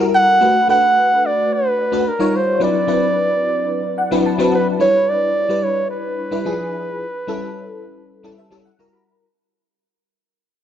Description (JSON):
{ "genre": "pop", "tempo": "109 BPM", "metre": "4/4", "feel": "straight", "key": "D major", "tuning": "A4 = 440 Hz", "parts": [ { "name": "FM electric piano", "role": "accompaniment", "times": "0.0-9.2 s", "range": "F3 to B5", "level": "-20 LUFS", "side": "left 2 dB", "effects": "ensemble chorus" }, { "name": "mellow flugelhorn", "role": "melody", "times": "0.1-8.6 s", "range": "Bb4 to F#5", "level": "-16 LUFS", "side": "right 2 dB", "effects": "none" } ], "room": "moderate plate reverb, RT60 3.2 s", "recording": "none", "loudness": "-15 LUFS", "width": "side -10 dB against mid", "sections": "0.0-4.8 A section; 4.8-9.2 B section", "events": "FM electric piano fill 3.7-4.8, 8.1-9.2; fade-out 4.8-9.2", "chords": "0.4 Bm7; 2.1 Eb9; 2.6 D13; 4.8 G6; 6.5 E7b9; 7.0 A7; 8.6 F#7b9", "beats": "| 0.41 0.96 1.51 2.06 | 2.61 3.16 3.71 4.25 | 4.80 5.35 5.90 6.45 | 7.00 7.55 8.10 8.65" }